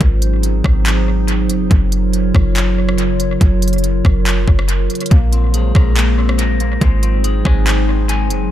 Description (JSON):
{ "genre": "hip hop, atmospheric cloud-rap", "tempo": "141 BPM", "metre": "4/4", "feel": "half-time", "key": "unclear", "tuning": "A4 = 440 Hz", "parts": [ { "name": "warbly tape-like pad", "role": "sustained chords", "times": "0.0-8.5 s", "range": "Db3 to Db5", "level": "-19 LUFS", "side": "right 2 dB", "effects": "chorus, built-in reverb, tremolo, sidechain pumping" }, { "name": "clean 808-style bass", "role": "bass", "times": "0.0-8.5 s", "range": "Gb1 to Bb1", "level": "-15 LUFS", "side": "equal", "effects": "none" }, { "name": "trap drum kit", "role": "drums", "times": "0.0-8.4 s", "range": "handclaps, hi-hat, kick drum, rim click", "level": "-17 LUFS", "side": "equal", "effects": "analog delay" }, { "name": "clean electric guitar", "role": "arpeggios", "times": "5.1-8.5 s", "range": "Ab3 to Ab5", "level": "-23 LUFS", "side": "left 7 dB", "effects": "phaser, low-pass filter, analog delay" } ], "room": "little or no reverb", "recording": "echo-heavy mix", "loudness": "-12 LUFS", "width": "side -12 dB against mid", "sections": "0.0-8.5 A section", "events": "none", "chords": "0.0 Ab7; 1.7 Gbmaj7; 5.1 Bbm9; 6.8 Ab7" }